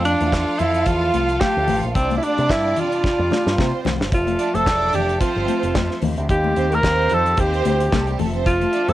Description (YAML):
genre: disco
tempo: 111 BPM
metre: 4/4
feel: swing 56% on 16ths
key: F major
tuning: A4 = 439 Hz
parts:
  - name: breathy alto saxophone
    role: melody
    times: 0.0-8.9 s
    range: C4 to Bb4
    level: -20 LUFS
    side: equal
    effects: cassette tape
  - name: rich studio violin section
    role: second line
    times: 0.0-8.9 s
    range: G3 to F5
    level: -26 LUFS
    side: right 8 dB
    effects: cassette tape
  - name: clear studio string section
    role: sustained chords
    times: 0.0-8.9 s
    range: C3 to E5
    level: -30 LUFS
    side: left 1 dB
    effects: cassette tape
  - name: picked electric bass with an envelope filter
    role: bass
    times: 0.0-8.9 s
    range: E1 to C3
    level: -23 LUFS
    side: equal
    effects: none
  - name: damped 70s drum kit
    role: drums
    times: 0.0-8.9 s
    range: handclaps, hi-hat, kick drum, snare drum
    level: -23 LUFS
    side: equal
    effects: cassette tape
  - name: congas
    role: percussion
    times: 0.2-8.9 s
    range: none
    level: -28 LUFS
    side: left 8 dB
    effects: none
room: light reverb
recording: home recording on cassette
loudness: -17 LUFS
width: side -14 dB against mid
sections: 0.0-4.1 A section; 4.1-8.9 B section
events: drum fill 3.0-4.1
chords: 0.0 Fmaj7; 2.0 Csus4; 4.1 Fmaj7; 6.0 Eb6; 8.2 Fmaj7